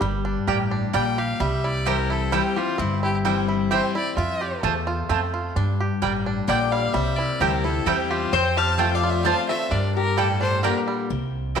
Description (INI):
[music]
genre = bluegrass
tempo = 130 BPM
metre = 3/4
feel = straight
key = G dorian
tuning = A4 = 440 Hz
[part]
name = bluegrass banjo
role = melody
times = 0.0-11.6 s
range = D3 to G4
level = -29 LUFS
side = right 4 dB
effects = none
[part]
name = picked steel-string acoustic guitar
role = accompaniment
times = 0.0-11.6 s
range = E2 to F4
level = -26 LUFS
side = left 7 dB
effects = none
[part]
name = upright bass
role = bass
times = 0.0-11.6 s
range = G1 to G2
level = -27 LUFS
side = right 2 dB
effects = none
[part]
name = mandolin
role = stabs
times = 0.5-11.6 s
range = Bb3 to A5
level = -27 LUFS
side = right 8 dB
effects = none
[part]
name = clear fiddle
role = melody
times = 0.9-10.8 s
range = E4 to A5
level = -27 LUFS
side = left 1 dB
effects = none
[part]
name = lap resonator guitar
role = second line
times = 6.5-10.9 s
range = D4 to F5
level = -27 LUFS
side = left 7 dB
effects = slapback echo
[sound]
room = wet echo chamber reverb, RT60 1.5 s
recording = 1960s-style stereo with parts hard left and right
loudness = -20 LUFS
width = side -7 dB against mid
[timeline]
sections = 0.0-11.1 A section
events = none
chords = 0.0 Gm; 1.4 C; 4.2 F; 5.6 Gm; 6.9 C; 8.3 F; 9.7 Gm; 11.1 N.C.